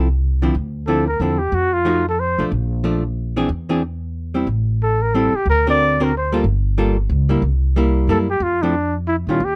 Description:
jazz, small-group swing and bop; 183 BPM; 3/4; swing 61% on 8ths; F major; A4 = 440 Hz
archtop guitar, miked and amplified; accompaniment; 0.0-9.4 s; D3 to A#4; -22 LUFS; equal
upright bass; bass; 0.0-9.6 s; G1 to Bb2; -22 LUFS; equal
mellow trumpet; melody; 0.9-2.5, 4.8-9.6 s; D4 to D5; -21 LUFS; equal
little or no reverb; dry, close 1970s-style studio recording; -19 LUFS; mono
0.5-8.4 A section; 8.4-9.6 B section
0.0 Fmaj7(no3); 0.5 Dm9; 1.5 F7b9; 2.5 Bbmaj7; 3.5 Em(b13); 4.5 Am7; 5.5 D7b13; 6.4 Gm9; 7.4 C7; 8.4 Fmaj7(no3)
0.22 | 0.55 0.88 1.20 | 1.53 1.86 2.19 | 2.51 2.84 3.17 | 3.50 3.82 4.15 | 4.48 4.81 5.13 | 5.46 5.79 6.12 | 6.45 6.77 7.10 | 7.43 7.76 8.09 | 8.41 8.74 9.07 | 9.40

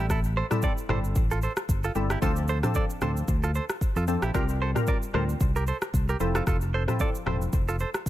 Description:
afrobeats; 113 BPM; 4/4; swing 55% on 16ths; A4 = 440 Hz
glassy wavetable pluck; accompaniment; 0.0-7.5 s; F3 to Bb4; -31 LUFS; left 2 dB; chorus
direct-recorded clean electric guitar; riff; 0.0-7.9 s; E4 to D5; -32 LUFS; right 4 dB; ping-pong delay
fingered electric bass; bass; 0.0-7.8 s; E1 to F2; -27 LUFS; equal
afro-pop drum kit; drums; 0.1-8.1 s; kick drum, rim click, shaker, toms; -28 LUFS; equal
little or no reverb; -24 LUFS; side -14 dB against mid
0.0-4.3 A section; 4.3-8.1 B section
0.0 Am7; 2.2 Dm7; 4.3 C7sus4; 6.2 Fmaj7
| 0.10 0.63 1.16 1.69 | 2.22 2.75 3.28 3.81 | 4.35 4.88 5.41 5.94 | 6.47 7.00 7.53 8.06

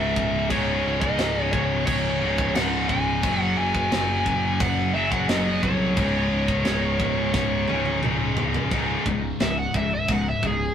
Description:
heavy metal; 88 BPM; 4/4; straight; A4 = 438 Hz
high-gain lead guitar; melody; 0.0-10.7 s; G#4 to G#5; -27 LUFS; equal; distortion
distorted electric guitar; riff; 0.0-10.7 s; C#2 to F#3; -31 LUFS; right 5 dB; distortion
scooped high-gain guitar; riff; 0.0-10.7 s; C#2 to F#3; -26 LUFS; left 4 dB; distortion
thick fuzz guitar; riff; 0.0-10.7 s; C#2 to F#3; -32 LUFS; equal; distortion
modern bright picked electric bass; bass; 0.0-10.7 s; C#1 to B#1; -30 LUFS; right 1 dB
tight metal drum kit; drums; 0.2-10.6 s; china cymbal, crash cymbal, kick drum, snare drum, toms; -28 LUFS; equal
moderate small room reverb, RT60 0.6 s; rough rehearsal-room recording; -20 LUFS; side -8 dB against mid
0.0-8.7 A section; 8.7-10.7 B section
drum fill 7.3-8.7; lead electric guitar solo 8.7-10.7
0.0 C#5; 3.2 F#5; 6.0 C#5
| 0.51 1.19 1.87 2.56 | 3.24 3.92 4.61 5.29 | 5.98 6.66 7.34 8.03 | 8.71 9.40 10.08

